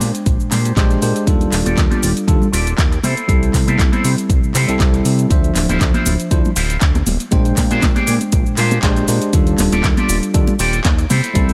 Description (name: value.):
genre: nu-disco, nu disco.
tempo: 119 BPM.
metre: 4/4.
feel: swing 55% on 16ths.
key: unclear.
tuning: A4 = 440 Hz.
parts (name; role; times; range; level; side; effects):
bell-like tine electric piano; accompaniment; 0.0-11.5 s; F3 to G5; -22 LUFS; equal; subtle chorus.
electric guitar with an envelope filter; riff; 0.0-11.5 s; D4 to D5; -25 LUFS; equal; lush chorus, low-pass filter, tape echo.
fat analog bass; bass; 0.0-11.5 s; D1 to C3; -21 LUFS; equal; sidechain pumping.
pop drum kit; drums; 0.0-11.5 s; handclaps, hi-hat, shaker; -25 LUFS; equal; none.
electronic kick drum; drums; 0.3-11.5 s; none; -18 LUFS; equal; none.
congas; percussion; 0.5-11.5 s; none; -26 LUFS; equal; none.
room: digital ambience.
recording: dry, gritty hardware recording.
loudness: -15 LUFS.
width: mono.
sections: 0.0-11.5 A section.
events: filter sweep on clean electric guitar 0.0-11.5.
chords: 0.0 Bb13; 1.3 Ebmaj9#11; 3.0 C6; 5.3 Dm9; 7.3 Bb13; 9.3 Ebmaj9#11.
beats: 0.26 0.77 | 1.27 1.78 2.28 2.78 | 3.29 3.79 4.30 4.80 | 5.30 5.81 6.31 6.82 | 7.32 7.83 8.33 8.84 | 9.34 9.84 10.35 10.85 | 11.36.